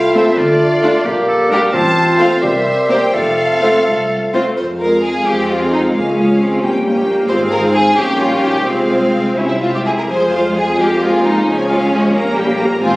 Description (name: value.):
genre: quick classical-period movement for symphony orchestra.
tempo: 87 BPM (dotted quarters).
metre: 6/8.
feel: rubato.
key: F major, F minor from 4.6 s.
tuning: A4 = 440 Hz.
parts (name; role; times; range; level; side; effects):
warm studio violin section; melody; 0.0-13.0 s; D5 to Bb5; -23 LUFS; left 1 dB; none.
bright clarinet; second line; 0.0-4.3 s; D4 to G4; -22 LUFS; equal; none.
bright oboe; second line; 0.0-4.2 s; F4 to C5; -21 LUFS; equal; none.
mellow bassoon; accompaniment; 0.0-4.3 s; G3 to C4; -17 LUFS; equal; none.
dark French horn section; sustained chords; 0.0-13.0 s; G3 to Bb4; -18 LUFS; equal; none.
dark studio double bass section; bass; 0.0-13.0 s; F1 to F2; -23 LUFS; equal; none.
rich studio cello section; bass; 0.0-13.0 s; C2 to C4; -22 LUFS; equal; none.
rich studio viola section; accompaniment; 0.1-13.0 s; F3 to C5; -20 LUFS; equal; none.
rich studio violin section; second line; 0.2-13.0 s; C4 to C5; -18 LUFS; equal; none.
room: wet scoring stage reverb, RT60 1.6 s.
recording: recorded on a phone in the room, studio reverb.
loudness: -12 LUFS.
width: side -21 dB against mid.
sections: 0.0-4.6 A section; 4.6-13.0 B section.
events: none.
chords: 0.4 Dm; 1.1 Gm/Bb; 1.7 F/A; 2.4 C7; 3.1 F; 4.6 Fm; 5.9 Db; 6.6 Gdim/Bb; 7.3 Fm/Ab; 8.0 Gdim/Bb; 8.7 Fm/C; 9.4 C; 10.1 Fm; 11.5 Db; 12.1 Gdim/Bb.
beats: | 0.37 1.05 | 1.73 2.42 | 3.13 3.85 | 4.57 5.27 | 5.95 6.62 | 7.29 7.97 | 8.66 9.37 | 10.07 10.77 | 11.46 12.14 | 12.81.